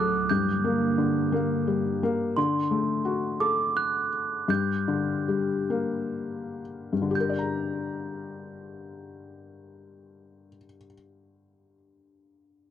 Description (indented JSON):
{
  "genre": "children's music, lullaby",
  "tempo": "57-89 BPM",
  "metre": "3/4",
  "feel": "straight",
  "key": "G harmonic minor",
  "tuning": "A4 = 440 Hz",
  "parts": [
    { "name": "glockenspiel with rubber mallets", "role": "melody", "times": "0.0-10.7 s", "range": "C6 to G6", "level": "-30 LUFS", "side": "right 5 dB", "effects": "none" },
    { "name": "felt-muted upright piano", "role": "accompaniment", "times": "0.0-12.7 s", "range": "G2 to Bb5", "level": "-27 LUFS", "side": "left 4 dB", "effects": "none" },
    { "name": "warbly tape-like pad", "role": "sustained chords", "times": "0.0-2.3 s", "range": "D2 to Bb3", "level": "-29 LUFS", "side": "right 6 dB", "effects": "chorus, built-in reverb" }
  ],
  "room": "light reverb",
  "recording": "dry, close 1970s-style studio recording",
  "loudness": "-24 LUFS",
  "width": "side -10 dB against mid",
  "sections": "0.0-2.4 A section; 2.4-7.2 B section; 7.2-12.7 C section",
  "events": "slowing down 2.4-7.2",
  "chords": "0.3 Gm; 2.4 D; 4.5 Gm"
}